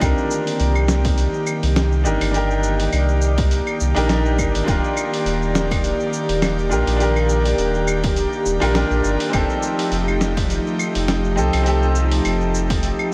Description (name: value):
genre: sunset chillout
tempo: 103 BPM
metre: 4/4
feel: swing 55% on 16ths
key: unclear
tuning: A4 = 443 Hz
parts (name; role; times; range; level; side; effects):
- bright grand piano; accompaniment; 0.0-13.1 s; C4 to Bb4; -26 LUFS; equal; tape echo, shimmer reverb
- airy breathy pad; sustained chords; 0.0-13.1 s; Eb3 to D5; -25 LUFS; equal; chorus, shimmer reverb
- warm sub bass; bass; 0.0-12.9 s; Eb1 to C2; -23 LUFS; equal; none
- dusty soul sampler-style drum kit; drums; 0.0-13.1 s; claves, hi-hat, shaker, snare drum; -29 LUFS; equal; none
- electronic kick drum; drums; 0.0-12.8 s; none; -25 LUFS; equal; overdrive
room: wet huge ambient reverb, RT60 7.6 s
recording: dreamy mix soaked in reverb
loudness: -19 LUFS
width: mono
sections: 0.0-13.1 A section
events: none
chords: 0.0 Cm7; 4.7 Ebmaj7; 9.3 F9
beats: | 0.01 0.60 1.18 1.76 | 2.35 2.93 3.51 4.09 | 4.68 5.26 5.84 6.42 | 7.01 7.59 8.17 8.75 | 9.34 9.92 10.50 11.08 | 11.67 12.25 12.83